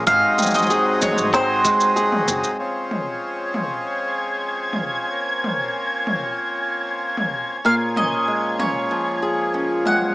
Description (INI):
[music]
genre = folktronica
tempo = 95 BPM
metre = 4/4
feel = straight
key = Db major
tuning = A4 = 440 Hz
[part]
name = accordion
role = sustained chords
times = 0.0-10.1 s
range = Bb2 to Eb4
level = -24 LUFS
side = left 1 dB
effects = plate reverb
[part]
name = nylon-string guitar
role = arpeggios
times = 0.0-3.2, 7.6-10.1 s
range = Ab2 to Ab4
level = -23 LUFS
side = equal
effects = digital delay
[part]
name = mandolin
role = melody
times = 0.1-2.2, 7.7-10.1 s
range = C5 to Gb5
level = -20 LUFS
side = right 1 dB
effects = digital delay, plate reverb
[part]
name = upright bass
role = bass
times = 0.1-2.4 s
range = Gb1 to Ab1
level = -32 LUFS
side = equal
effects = none
[part]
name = kick drum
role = drums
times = 0.1-1.8 s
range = none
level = -32 LUFS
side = equal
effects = none
[part]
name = organic electronic drum kit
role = drums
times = 0.1-10.1 s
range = shaker, snare drum, toms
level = -24 LUFS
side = equal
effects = none
[part]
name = flickering grainy texture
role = texture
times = 3.3-10.1 s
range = Ab6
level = -26 LUFS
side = equal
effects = built-in reverb
[sound]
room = moderate small room reverb, RT60 0.5 s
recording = small speaker sound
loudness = -18 LUFS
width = side -19 dB against mid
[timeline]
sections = 0.0-2.6 A section; 2.6-10.1 B section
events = none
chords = 0.1 Ab7; 2.6 Dbmaj7; 7.6 Bbm7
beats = | 0.07 0.70 1.33 1.96 | 2.59 3.23 3.86 4.49 | 5.12 5.75 6.38 7.01 | 7.65 8.28 8.91 9.54